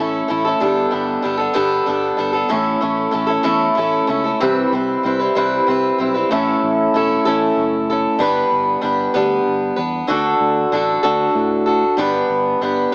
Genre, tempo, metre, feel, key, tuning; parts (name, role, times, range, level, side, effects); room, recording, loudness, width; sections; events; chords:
rock; 63 BPM (dotted quarters); 6/8; straight; A mixolydian; A4 = 440 Hz
picked swing-style acoustic guitar; accompaniment; 0.0-12.9 s; A2 to B4; -16 LUFS; equal; cassette tape
electric guitar through a small old amp; riff; 0.0-12.9 s; A2 to B4; -23 LUFS; equal; cassette tape
fingered electric bass; bass; 0.0-12.9 s; E1 to A2; -29 LUFS; equal
light reverb, small room ambience; home recording on cassette, AM radio sound; -15 LUFS; side -33 dB against mid
0.0-6.3 A section; 6.3-12.9 B section
0.0 A; 0.6 Gadd9; 2.5 A; 4.4 Cmaj7; 6.3 A; 8.2 G; 10.1 D; 12.0 G